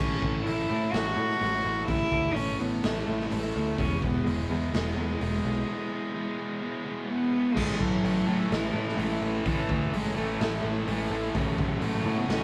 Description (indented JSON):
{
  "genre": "quiet-loud alternative rock",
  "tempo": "127 BPM",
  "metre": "4/4",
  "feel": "straight",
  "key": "A major",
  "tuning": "A4 = 440 Hz",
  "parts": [
    { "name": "rich cello", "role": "melody", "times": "0.0-12.4 s", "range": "E3 to F#4", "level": "-32 LUFS", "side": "equal", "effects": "none" },
    { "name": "fuzz guitar", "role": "riff", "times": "0.0-12.4 s", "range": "E3 to A4", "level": "-39 LUFS", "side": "equal", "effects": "distortion" },
    { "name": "fuzz guitar", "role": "riff", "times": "0.0-12.4 s", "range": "E3 to A4", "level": "-40 LUFS", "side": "equal", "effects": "distortion" },
    { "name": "picked electric bass", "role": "bass", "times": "0.0-12.4 s", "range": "E1 to A2", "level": "-35 LUFS", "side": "equal", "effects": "none" },
    { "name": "raw garage drum kit", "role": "drums", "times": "0.2-12.4 s", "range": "crash cymbal, hi-hat, kick drum, snare drum", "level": "-34 LUFS", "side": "equal", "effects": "none" },
    { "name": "fuzz guitar", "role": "riff", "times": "7.5-12.4 s", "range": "F#2 to A3", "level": "-34 LUFS", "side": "equal", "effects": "distortion" }
  ],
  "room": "moderate stone room reverb, RT60 1.2 s",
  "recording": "rough rehearsal-room recording",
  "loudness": "-28 LUFS",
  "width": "mono",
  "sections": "0.0-7.6 A section; 7.6-12.4 A section",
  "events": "none",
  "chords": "0.0 A; 3.8 E; 7.6 A; 11.3 F#m/A"
}